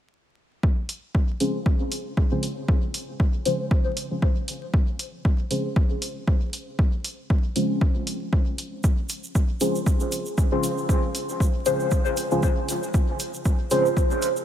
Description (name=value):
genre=dub techno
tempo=117 BPM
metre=4/4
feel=swing 55% on 16ths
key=unclear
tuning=A4 = 440 Hz
part: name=electronic kick drum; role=drums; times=0.6-14.1 s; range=none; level=-21 LUFS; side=equal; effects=overdrive
part: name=electronic hi-hat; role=drums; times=0.9-14.3 s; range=none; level=-33 LUFS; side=equal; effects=overdrive
part: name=deep mellow chord stab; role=stabs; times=1.4-13.9 s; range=Db4 to C5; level=-26 LUFS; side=equal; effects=chorus, phaser, sidechain pumping, dub echo
part: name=egg shaker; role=percussion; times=8.8-14.4 s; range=none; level=-36 LUFS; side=right 4 dB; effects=none
room=moderate huge ambient reverb, RT60 4.4 s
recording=dreamy mix soaked in reverb, vinyl crackle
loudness=-22 LUFS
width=side -10 dB against mid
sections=0.6-14.4 A section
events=filter sweep on synth stab 0.6-14.4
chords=0.6 Dbmaj7